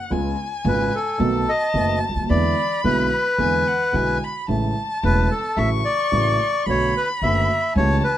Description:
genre	tango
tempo	110 BPM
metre	4/4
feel	rubato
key	unclear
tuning	A4 = 440 Hz
part	warm violin	second line	0.0-8.2 s	F#5 to C#6	-26 LUFS	left 2 dB	none
part	dark baby grand piano	accompaniment	0.1-8.0 s	E1 to G4	-24 LUFS	right 2 dB	none
part	upright bass	bass	0.1-8.0 s	E1 to E2	-23 LUFS	equal	none
part	bandoneon	melody	0.7-8.2 s	A4 to E5	-21 LUFS	left 1 dB	none
room	moderate club reverb, RT60 0.6 s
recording	minimal, uncompressed stereo recording, vinyl crackle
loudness	-18 LUFS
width	side -12 dB against mid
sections	0.0-8.2 A section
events	none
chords	0.1 C#7; 1.2 B7; 2.3 E7; 4.5 Amaj7; 5.6 F#m7/A; 6.7 Bm7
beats	| 0.11 0.66 1.20 1.75 | 2.29 2.84 3.39 3.94 | 4.49 5.04 5.59 6.13 | 6.68 7.22 7.77

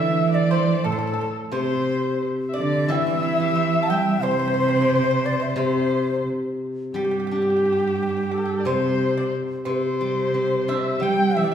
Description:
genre	chinese traditional, Chinese chamber ensemble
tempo	88 BPM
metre	2/4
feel	rubato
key	C gong mode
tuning	A4 = 439 Hz
part	xiao	melody	0.0-11.5 s	G4 to G5	-25 LUFS	left 1 dB	none
part	dark cello	second line	0.0-11.5 s	G2 to G3	-24 LUFS	right 4 dB	none
part	pipa	second line	0.0-11.5 s	G4 to A5	-30 LUFS	right 1 dB	none
part	warm erhu	second line	0.0-11.5 s	G4 to G5	-29 LUFS	left 4 dB	none
part	steel-string zither	accompaniment	0.0-11.5 s	C3 to C5	-26 LUFS	left 2 dB	none
room	wet recital hall reverb, RT60 1.7 s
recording	heard from further back in the room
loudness	-20 LUFS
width	side -9 dB against mid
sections	0.0-7.0 A section; 7.0-11.5 B section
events	none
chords	none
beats	| 0.16 0.84 | 1.53 2.22 | 2.89 3.56 | 4.24 4.91 | 5.59 6.28 | 6.97 7.66 | 8.35 9.01 | 9.67 10.35 | 11.02

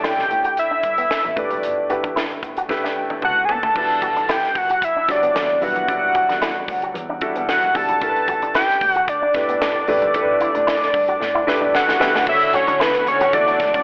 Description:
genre	polished 1980s jazz-funk pop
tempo	113 BPM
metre	4/4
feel	swing 54% on 16ths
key	unclear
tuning	A4 = 440 Hz
part	fat analog lead	melody	0.0-13.8 s	B4 to A5	-20 LUFS	equal	chorus
part	warm baby grand piano	accompaniment	0.0-13.8 s	F#3 to A5	-27 LUFS	equal	lush chorus
part	electric guitar with an envelope filter	riff	0.0-13.8 s	F#3 to F#4	-30 LUFS	equal	subtle chorus
part	tight funk drum kit	drums	0.0-13.8 s	crash cymbal, hi-hat, kick drum, snare drum, toms	-28 LUFS	equal	gated reverb
part	clear double bass	bass	0.2-13.8 s	E1 to D3	-39 LUFS	equal	none
part	bright studio string section	sustained chords	12.3-13.8 s	D3 to F#4	-32 LUFS	equal	none
room	moderate lush hall reverb, RT60 1.9 s, small room reverb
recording	telephone sound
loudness	-19 LUFS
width	mono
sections	0.0-3.8 A section; 3.8-12.3 B section; 12.3-13.8 C section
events	drum fill 2.7-3.8, 11.2-12.3; grand piano fill 2.7-3.8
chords	0.0 A9sus4; 1.4 G69; 2.7 A9sus4; 3.8 Em9; 8.0 A7sus4; 12.3 Dmaj9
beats	0.04 0.57 1.10 | 1.63 2.16 2.70 3.23 | 3.76 4.29 4.82 5.36 | 5.89 6.42 6.95 7.48 | 8.02 8.55 9.08 9.61 | 10.14 10.68 11.21 11.74 | 12.27 12.80 13.33

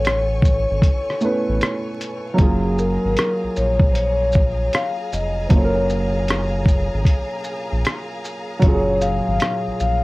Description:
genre	lo-fi hip hop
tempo	77 BPM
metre	4/4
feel	swing 66% on 16ths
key	F# major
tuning	A4 = 440 Hz
part	vibraphone with soft mallets	melody	0.0-10.0 s	G#4 to E#5	-24 LUFS	left 2 dB	none
part	dark upright piano	accompaniment	0.0-10.0 s	A#2 to B4	-24 LUFS	right 2 dB	cassette tape
part	clear studio string section	sustained chords	0.0-10.0 s	G#4 to C#6	-33 LUFS	left 1 dB	plate reverb
part	round analog bass	bass	0.0-10.0 s	E#1 to A#1	-23 LUFS	equal	transformer saturation
part	lo-fi sampler-style drum kit	drums	0.1-10.0 s	hi-hat, kick drum, rim click, shaker	-17 LUFS	equal	none
room	light reverb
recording	worn, warbling old tape, cassette tape, vinyl crackle, warbly pitch drift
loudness	-17 LUFS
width	side -21 dB against mid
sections	0.0-10.0 A section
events	none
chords	0.0 Amaj9; 2.4 F#maj9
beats	0.05 0.83 1.61 | 2.39 3.17 3.95 4.73 | 5.51 6.29 7.06 7.84 | 8.62 9.40

